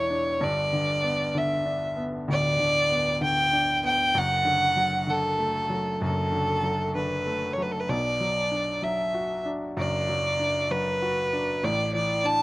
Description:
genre	pop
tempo	64 BPM (dotted quarters)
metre	6/8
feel	straight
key	B minor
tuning	A4 = 440 Hz
part	warm violin	melody	0.0-12.4 s	A4 to A5	-24 LUFS	equal	slapback echo
part	clear concert grand piano	accompaniment	0.0-12.4 s	D1 to F#4	-29 LUFS	equal	none
room	little or no reverb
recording	recorded outdoors, with no room sound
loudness	-23 LUFS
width	side -19 dB against mid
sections	0.0-12.4 A section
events	none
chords	0.4 G; 4.1 D/F#; 7.9 Bm; 11.6 Asus4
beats	| 0.41 1.35 | 2.28 3.22 | 4.14 5.07 | 6.01 6.95 | 7.88 8.82 | 9.76 10.69 | 11.62

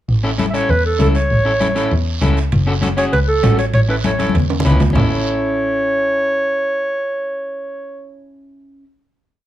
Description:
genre	latin, cumbia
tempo	197 BPM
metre	4/4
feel	straight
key	A major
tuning	A4 = 440 Hz
part	dark double bass	bass	0.1-8.2 s	F#1 to E2	-17 LUFS	equal	none
part	congas	percussion	0.1-5.0 s	none	-22 LUFS	left 2 dB	none
part	guiro	percussion	0.1-5.0 s	none	-31 LUFS	right 6 dB	none
part	electric guitar at the edge of break-up	accompaniment	0.2-8.9 s	C#4 to B4	-23 LUFS	left 1 dB	none
part	warm clarinet	melody	0.5-8.1 s	A4 to E5	-18 LUFS	right 1 dB	none
part	timbales	percussion	2.5-5.0 s	none	-25 LUFS	right 5 dB	none
room	light reverb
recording	dark, warm production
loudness	-14 LUFS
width	side -13 dB against mid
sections	0.1-5.0 A section; 5.0-7.4 final chord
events	drum fill 4.2-5.0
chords	0.1 A; 2.5 F#m; 3.7 A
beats	| 0.09 0.40 0.70 1.00 | 1.31 1.61 1.91 2.22 | 2.52 2.83 3.13 3.44 | 3.74 4.04 4.35 4.65 | 4.96 5.26 5.57 5.87 | 6.17 6.48 6.78 7.08

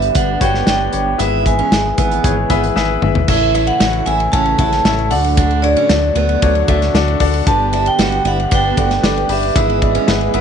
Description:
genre	piano-driven pop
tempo	115 BPM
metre	4/4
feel	straight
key	A major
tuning	A4 = 439 Hz
part	vibraphone with hard mallets	melody	0.0-10.3 s	D5 to A5	-18 LUFS	right 2 dB	slapback echo
part	clear baby grand piano	accompaniment	0.0-10.4 s	G2 to F#5	-20 LUFS	left 13 dB	none
part	dark studio string section	sustained chords	0.0-10.4 s	C#3 to B3	-25 LUFS	left 1 dB	stereo widening
part	round analog bass	bass	0.0-10.4 s	G1 to D2	-19 LUFS	equal	none
part	modern studio drum kit	drums	0.0-10.4 s	crash cymbal, hi-hat, kick drum, ride cymbal, snare drum, toms	-18 LUFS	equal	none
part	picked steel-string acoustic guitar	riff	0.2-10.4 s	A3 to F#4	-25 LUFS	right 14 dB	none
part	mellow French horn section	second line	3.3-10.4 s	C#3 to A4	-24 LUFS	right 10 dB	none
room	light reverb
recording	1960s-style stereo with parts hard left and right, nothing above 10.8 kHz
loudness	-12 LUFS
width	side -7 dB against mid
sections	0.0-3.3 A section; 3.3-10.4 B section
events	drum fill 2.8-3.3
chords	0.0 G; 1.2 E/G#; 3.3 A; 5.1 D; 7.5 G; 9.6 E/G#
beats	0.15 0.67 | 1.19 1.72 2.24 2.76 | 3.28 3.81 4.33 4.85 | 5.37 5.90 6.42 6.94 | 7.47 7.99 8.51 9.03 | 9.56 10.08

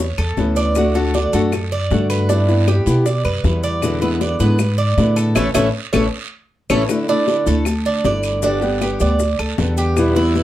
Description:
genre	latin, Cuban son and guajira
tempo	156 BPM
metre	4/4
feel	straight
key	D major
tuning	A4 = 441 Hz
part	nylon-string guitar	accompaniment	0.0-10.4 s	B2 to G4	-20 LUFS	left 2 dB	none
part	Cuban tres	arpeggios	0.0-10.4 s	D4 to D5	-21 LUFS	right 3 dB	none
part	upright bass	bass	0.0-10.4 s	G1 to B2	-18 LUFS	equal	none
part	claves	percussion	0.2-10.2 s	none	-29 LUFS	left 4 dB	none
part	maracas	percussion	0.2-10.4 s	none	-36 LUFS	left 7 dB	none
part	bongos	percussion	0.4-10.4 s	none	-26 LUFS	left 6 dB	none
part	guiro	percussion	0.4-10.4 s	none	-33 LUFS	right 7 dB	none
room	moderate studio ambience, RT60 0.5 s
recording	dark, warm production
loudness	-15 LUFS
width	side -14 dB against mid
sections	0.0-6.9 A section; 6.9-10.4 B section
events	band accent 5.4-6.9; drum fill 6.3-6.9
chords	0.0 Aadd9; 0.8 D; 2.3 G6; 3.8 E7; 5.4 A; 6.9 Dsus2; 8.4 Gadd9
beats	0.37 | 0.76 1.14 1.52 1.91 | 2.29 2.67 3.06 3.44 | 3.82 4.21 4.59 4.97 | 5.36 5.74 6.13 6.51 | 6.89 7.28 7.66 8.05 | 8.43 8.81 9.20 9.58 | 9.97 10.35

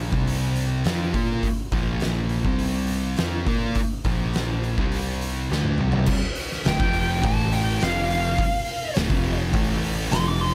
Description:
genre	stoner and doom metal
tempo	104 BPM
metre	4/4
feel	straight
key	D minor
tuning	A4 = 435 Hz
part	thick fuzz guitar	riff	0.0-10.5 s	D2 to Bb4	-30 LUFS	equal	distortion
part	thick fuzz guitar	riff	0.0-10.5 s	D2 to Bb4	-31 LUFS	equal	distortion
part	growling picked electric bass	bass	0.0-10.5 s	D1 to Bb2	-30 LUFS	equal	overdrive
part	oversized low-tuned drum kit	drums	0.1-10.5 s	crash cymbal, hi-hat, kick drum, snare drum, toms	-28 LUFS	equal	none
part	fuzz lead guitar	melody	6.7-10.5 s	F5 to D6	-29 LUFS	equal	wah, distortion, tape echo
room	little or no reverb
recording	none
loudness	-24 LUFS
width	mono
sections	0.0-6.1 A section; 6.1-10.5 B section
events	drum fill 5.5-6.1; lead electric guitar solo 6.1-10.5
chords	0.1 C5; 0.9 Bb5; 2.5 C5; 3.2 Bb5; 4.8 C5; 5.5 Gsus24; 6.1 Dm; 7.2 A5; 7.8 F5; 9.0 Dm; 9.5 A5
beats	0.27 0.85 | 1.44 2.02 2.60 3.18 | 3.77 4.35 4.93 5.51 | 6.09 6.67 7.24 7.82 | 8.40 8.97 9.55 10.12

